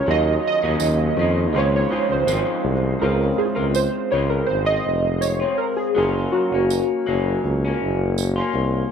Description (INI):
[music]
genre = indie pop, bedroom pop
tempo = 81 BPM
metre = 4/4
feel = straight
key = Db major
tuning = A4 = 440 Hz
[part]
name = warbly lo-fi synth keys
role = melody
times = 0.0-8.5 s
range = Gb4 to Eb5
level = -22 LUFS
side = right 1 dB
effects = analog chorus, tape echo
[part]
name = clear upright piano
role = accompaniment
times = 0.0-8.9 s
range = Gb3 to F5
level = -29 LUFS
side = right 6 dB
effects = none
[part]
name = electric guitar through a small old amp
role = accompaniment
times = 0.0-8.9 s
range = Db3 to F4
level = -26 LUFS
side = left 5 dB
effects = wide subtle chorus, warbly pitch drift
[part]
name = lush unison pad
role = sustained chords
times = 0.0-3.0 s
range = Eb3 to F4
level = -31 LUFS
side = left 1 dB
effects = none
[part]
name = warm tuba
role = bass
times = 0.1-8.8 s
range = F1 to F2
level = -22 LUFS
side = equal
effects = none
[part]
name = tambourine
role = percussion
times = 0.8-8.4 s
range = none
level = -31 LUFS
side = right 19 dB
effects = none
[sound]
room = little or no reverb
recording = dry, close 1970s-style studio recording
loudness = -18 LUFS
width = side -7 dB against mid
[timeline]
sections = 0.0-3.0 A section; 3.0-8.9 B section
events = synth keys solo 0.0-3.0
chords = 0.1 Ebm9; 1.5 Dbmaj7; 6.0 Gbmaj7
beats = | 0.07 0.81 1.55 2.29 | 3.02 3.76 4.50 5.24 | 5.97 6.71 7.45 8.19